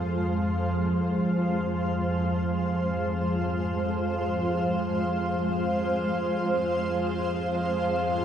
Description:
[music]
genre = dark ambient drone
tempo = free time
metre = none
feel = none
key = F minor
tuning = A4 = 440 Hz
[part]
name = granular cloud pad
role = sustained chords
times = 0.0-8.2 s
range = Ab3 to F5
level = -26 LUFS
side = equal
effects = built-in reverb
[part]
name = organ-like drone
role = drone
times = 0.0-8.2 s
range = F2 to F3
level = -29 LUFS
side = equal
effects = ensemble chorus, built-in reverb
[part]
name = bronze singing bowl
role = texture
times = 0.3-8.2 s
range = none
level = barely audible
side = none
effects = none
[sound]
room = wet cathedral reverb, RT60 6.2 s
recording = in a vast, echoing space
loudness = -24 LUFS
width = side -9 dB against mid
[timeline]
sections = 0.3-8.2 A section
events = none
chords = 0.3 Fm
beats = free time

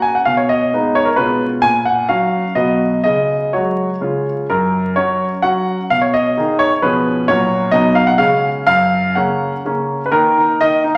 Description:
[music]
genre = classical-period piano sonatina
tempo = 123-133 BPM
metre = 3/4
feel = rubato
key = F# major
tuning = A4 = 441 Hz
[part]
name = clear baby grand piano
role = solo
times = 0.0-11.0 s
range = F#2 to G#5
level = -16 LUFS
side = equal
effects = none
[sound]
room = wet recital hall reverb, RT60 1.5 s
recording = vinyl crackle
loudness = -16 LUFS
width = mono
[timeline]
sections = 0.0-10.1 A section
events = none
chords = 0.3 G#m/B; 1.2 C#7/B; 1.6 F#/A#; 2.6 B; 3.1 C#sus4; 4.0 C#; 4.5 F#; 5.9 G#m/B; 6.8 C#7/B; 7.3 F#/A#; 7.7 B; 8.2 C#; 8.7 F#; 10.1 Eb5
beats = | 0.27 0.73 1.19 | 1.64 2.10 2.57 | 3.05 3.54 4.02 | 4.50 4.97 5.43 | 5.90 6.36 6.82 | 7.27 7.73 8.20 | 8.67 9.16 9.65 | 10.13 10.60

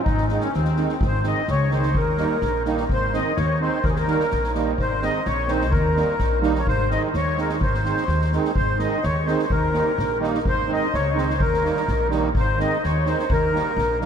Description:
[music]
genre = balkan folk, Balkan wedding band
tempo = 127 BPM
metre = 2/4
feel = straight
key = Ab major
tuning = A4 = 440 Hz
[part]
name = accordion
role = melody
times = 0.0-14.0 s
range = C4 to Eb5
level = -25 LUFS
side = equal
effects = light tremolo tuning, tape echo
[part]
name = warm trumpet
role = second line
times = 0.1-14.0 s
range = C4 to Eb5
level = -29 LUFS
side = left 6 dB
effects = tape echo
[part]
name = upright bass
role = bass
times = 0.1-14.1 s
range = Ab1 to Eb2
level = -24 LUFS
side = left 1 dB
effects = none
[part]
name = street-band drum kit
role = percussion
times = 0.1-14.1 s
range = kick drum, snare drum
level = -28 LUFS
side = left 1 dB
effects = none
[part]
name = musette accordion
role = accompaniment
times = 0.3-14.1 s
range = Eb3 to Eb4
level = -26 LUFS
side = right 5 dB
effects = none
[sound]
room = moderate huge ambient reverb, RT60 7.4 s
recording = dreamy mix soaked in reverb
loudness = -19 LUFS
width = side -8 dB against mid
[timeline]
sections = 0.0-1.0 A section; 1.0-8.6 B section; 8.6-14.1 B section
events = none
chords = 0.1 Ab; 2.0 Eb; 2.9 Ab; 3.8 Eb; 4.8 Ab; 5.7 Eb; 6.7 Ab; 9.5 Eb; 10.5 Ab; 11.4 Eb; 12.3 Ab; 13.3 Eb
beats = | 0.06 0.54 | 1.01 1.48 | 1.95 2.43 | 2.90 3.37 | 3.84 4.31 | 4.79 5.26 | 5.73 6.20 | 6.68 7.15 | 7.62 8.09 | 8.57 9.04 | 9.51 9.98 | 10.46 10.93 | 11.40 11.88 | 12.35 12.82 | 13.30 13.77

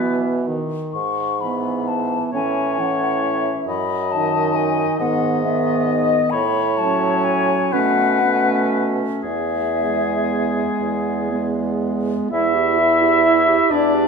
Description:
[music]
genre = classical, slow romantic movement for wind quintet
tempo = 38-46 BPM (dotted quarters)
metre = 6/8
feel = rubato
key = E major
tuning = A4 = 440 Hz
[part]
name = warm oboe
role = second line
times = 0.0-14.1 s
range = G#4 to E5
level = -23 LUFS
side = left 3 dB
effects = none
[part]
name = clear French horn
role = accompaniment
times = 0.0-14.1 s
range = D#3 to E4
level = -22 LUFS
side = right 1 dB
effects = none
[part]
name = clear clarinet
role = accompaniment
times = 0.0-14.1 s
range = B3 to G4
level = -24 LUFS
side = right 4 dB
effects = none
[part]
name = warm bassoon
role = bass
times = 0.0-14.1 s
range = E2 to B2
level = -24 LUFS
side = right 4 dB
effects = none
[part]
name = mellow hollow concert flute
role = melody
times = 0.9-14.1 s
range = D5 to C#6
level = -23 LUFS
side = left 8 dB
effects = none
[sound]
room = wet recital hall reverb, RT60 1.4 s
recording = minimal, uncompressed stereo recording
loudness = -17 LUFS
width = side -5 dB against mid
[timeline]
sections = 0.0-12.3 A section; 12.3-14.1 B section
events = none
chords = 0.0 B; 0.9 E/G#; 2.3 A; 3.7 F#m69; 5.0 G#m; 6.3 F#m/A; 7.7 Bsus2; 9.2 E; 12.3 Em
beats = | 0.94 2.33 | 3.68 4.99 | 6.33 7.74 | 9.25 10.81 | 12.32 13.71

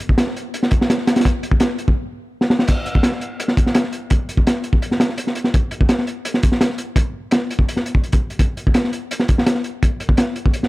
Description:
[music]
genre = drum and bass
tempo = 168 BPM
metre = 4/4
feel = straight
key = none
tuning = none
[part]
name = crunchy breakbeat drum kit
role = drums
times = 0.0-10.7 s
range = crash cymbal, hi-hat, kick drum, snare drum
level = -16 LUFS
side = equal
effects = none
[sound]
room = little or no reverb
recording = none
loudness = -16 LUFS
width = side -19 dB against mid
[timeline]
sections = 0.0-2.7 A section; 2.7-10.7 B section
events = build-up 0.0-2.7; stop 2.0-2.7; drum fill 2.4; drop 2.7-10.7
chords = none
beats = 0.18 0.54 0.89 | 1.25 1.61 1.97 2.32 | 2.68 3.04 3.39 3.75 | 4.11 4.46 4.82 5.18 | 5.54 5.89 6.25 6.61 | 6.96 7.32 7.68 8.04 | 8.39 8.75 9.11 9.46 | 9.82 10.18 10.54

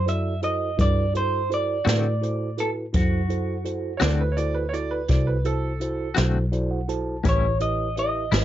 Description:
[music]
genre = slow blues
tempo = 56 BPM (dotted quarters)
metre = 12/8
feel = straight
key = unclear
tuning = A4 = 438 Hz
[part]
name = electric guitar through a small old amp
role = melody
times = 0.0-8.4 s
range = F#4 to E5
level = -27 LUFS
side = right 2 dB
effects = none
[part]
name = vintage muted fingered electric bass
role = bass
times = 0.0-8.4 s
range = G#1 to A2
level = -25 LUFS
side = equal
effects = none
[part]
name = mellow tine electric piano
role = accompaniment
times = 0.1-8.4 s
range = E4 to A5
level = -30 LUFS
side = right 3 dB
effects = auto-pan
[part]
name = jazz brush drum kit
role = drums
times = 0.1-8.4 s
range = hi-hat, kick drum, snare drum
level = -26 LUFS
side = equal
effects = none
[part]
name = semi-hollow electric guitar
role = accompaniment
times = 1.8-8.4 s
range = A2 to F#4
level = -27 LUFS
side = left 6 dB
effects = tremolo
[part]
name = bright upright piano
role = second line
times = 4.0-6.2 s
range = A4 to D5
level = -30 LUFS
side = right 4 dB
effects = none
[sound]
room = little or no reverb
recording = dark, warm production, nothing above 7.6 kHz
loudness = -21 LUFS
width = side -12 dB against mid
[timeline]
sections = 0.0-8.4 A section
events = tine electric piano fill 6.2-7.2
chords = 0.0 D7; 7.2 A7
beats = 0.78 1.86 | 2.93 4.01 5.09 6.17 | 7.25 8.32

